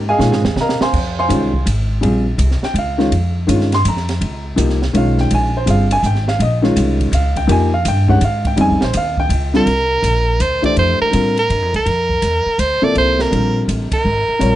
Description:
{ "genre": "modal jazz", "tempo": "165 BPM", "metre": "3/4", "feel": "swing 65% on 8ths", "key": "Bb dorian", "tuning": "A4 = 440 Hz", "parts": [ { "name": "warm upright piano", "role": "accompaniment", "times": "0.0-14.6 s", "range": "C3 to C6", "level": "-17 LUFS", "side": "equal", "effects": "none" }, { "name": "upright bass", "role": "bass", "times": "0.0-14.6 s", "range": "G1 to C3", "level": "-17 LUFS", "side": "equal", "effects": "none" }, { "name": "open jazz drum kit", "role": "drums", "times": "0.2-14.5 s", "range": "crash cymbal, hi-hat, kick drum, ride cymbal, snare drum", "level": "-25 LUFS", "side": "right 2 dB", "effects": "none" }, { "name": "edgy soprano saxophone", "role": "melody", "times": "9.6-14.6 s", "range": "Bb4 to D5", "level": "-16 LUFS", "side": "right 1 dB", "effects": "none" } ], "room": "little or no reverb", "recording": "dark, warm production, nothing above 10.4 kHz", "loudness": "-13 LUFS", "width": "side -14 dB against mid", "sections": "0.9-9.7 A section; 9.7-14.6 B section", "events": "drum fill 0.2-0.9; band accent 13.9", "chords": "0.0 Eb13sus4; 0.9 Bbm9; 9.7 C13sus4; 14.0 Eb9sus4 (rootless)", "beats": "0.20 0.56 | 0.93 1.29 1.66 | 2.02 2.39 2.75 | 3.12 3.48 3.84 | 4.21 4.57 4.94 | 5.30 5.67 6.03 | 6.39 6.76 7.12 | 7.48 7.85 8.21 | 8.58 8.94 9.30 | 9.67 10.03 10.40 | 10.76 11.12 11.49 | 11.85 12.22 12.58 | 12.95 13.31 13.67 | 14.04 14.40" }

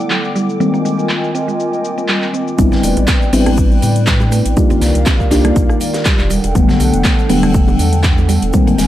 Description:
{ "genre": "deep house", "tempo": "121 BPM", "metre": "4/4", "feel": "swing 55% on 16ths", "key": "unclear", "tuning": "A4 = 440 Hz", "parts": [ { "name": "hollow soft pad", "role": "sustained chords", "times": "0.0-8.9 s", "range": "Eb3 to Ab5", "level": "-21 LUFS", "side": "right 1 dB", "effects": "chorus, sidechain pumping" }, { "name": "mellow FM electric piano", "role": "stabs", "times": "0.0-8.9 s", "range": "D3 to G4", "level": "-17 LUFS", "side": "left 2 dB", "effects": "chorus, analog delay" }, { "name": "house drum kit", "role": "drums", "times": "0.0-8.9 s", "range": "handclaps, hi-hat, rim click, shaker", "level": "-21 LUFS", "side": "equal", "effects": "low-pass filter on perc, studio reverb, low-pass filter on snare, low-pass filter on hats" }, { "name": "soft string machine", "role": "texture", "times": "0.0-2.6 s", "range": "D6", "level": "-33 LUFS", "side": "equal", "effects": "phaser, ensemble chorus, sidechain pumping" }, { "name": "mallet-like synth pluck", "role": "arpeggios", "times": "0.1-8.9 s", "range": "F#3 to D4", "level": "-23 LUFS", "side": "right 4 dB", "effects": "chorus, sidechain pumping, analog delay" }, { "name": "warm sub bass", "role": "bass", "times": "2.6-8.9 s", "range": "E1 to A2", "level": "-16 LUFS", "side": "equal", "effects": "tube saturation, sidechain pumping" }, { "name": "electronic kick drum", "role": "drums", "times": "2.6-8.6 s", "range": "none", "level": "-14 LUFS", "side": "equal", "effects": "studio reverb" }, { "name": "tight metal drum kit", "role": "drums", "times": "2.6-8.9 s", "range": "hi-hat, shaker, snare drum", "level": "-28 LUFS", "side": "left 1 dB", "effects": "sidechain pumping on hats, high-pass filter on hats, studio reverb, high-pass filter on snare, sidechain pumping on perc, high-pass filter on perc, high-pass filter on room" }, { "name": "congas and bongos", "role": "percussion", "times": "2.6-8.8 s", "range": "none", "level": "-27 LUFS", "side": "right 2 dB", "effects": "none" } ], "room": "small room ambience", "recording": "dry, gritty hardware recording", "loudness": "-11 LUFS", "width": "side -13 dB against mid", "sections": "0.0-2.6 A section; 2.6-8.9 B section", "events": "drop 2.6-8.9", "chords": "0.0 Em11; 0.6 Fm11; 2.6 Am11; 4.6 Cm11; 6.3 Em11", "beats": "0.11 | 0.60 1.10 1.59 2.09 | 2.59 3.08 3.58 4.07 | 4.57 5.07 5.56 6.06 | 6.55 7.05 7.54 8.04 | 8.54" }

